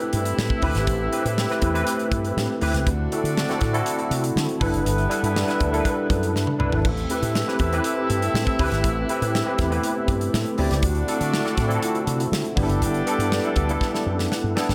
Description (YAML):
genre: polished 1980s jazz-funk pop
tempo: 121 BPM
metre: 4/4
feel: straight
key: A dorian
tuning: A4 = 439 Hz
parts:
  - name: mellow horn section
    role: second line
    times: 0.0-14.5 s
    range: G3 to E5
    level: -31 LUFS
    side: equal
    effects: none
  - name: tine electric piano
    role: accompaniment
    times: 0.0-14.7 s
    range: B3 to G5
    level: -28 LUFS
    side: equal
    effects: ensemble chorus
  - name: chorused pulse-width pad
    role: sustained chords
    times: 0.0-14.7 s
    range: D3 to B4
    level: -33 LUFS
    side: equal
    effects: none
  - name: modern studio drum kit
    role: drums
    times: 0.0-14.7 s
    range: crash cymbal, hi-hat, kick drum, snare drum, toms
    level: -29 LUFS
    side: equal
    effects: none
  - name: slap bass with an envelope filter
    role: bass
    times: 0.1-14.7 s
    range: F#1 to D3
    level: -27 LUFS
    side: equal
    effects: tube saturation
room: light reverb, studio reverb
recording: none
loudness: -23 LUFS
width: mono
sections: 0.0-14.7 A section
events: drum fill 6.4-6.8, 13.8-14.7; tine electric piano fill 14.1-14.7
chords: 0.0 Am7; 2.9 D9; 4.6 G6; 6.8 Am7; 10.8 D9; 12.6 G6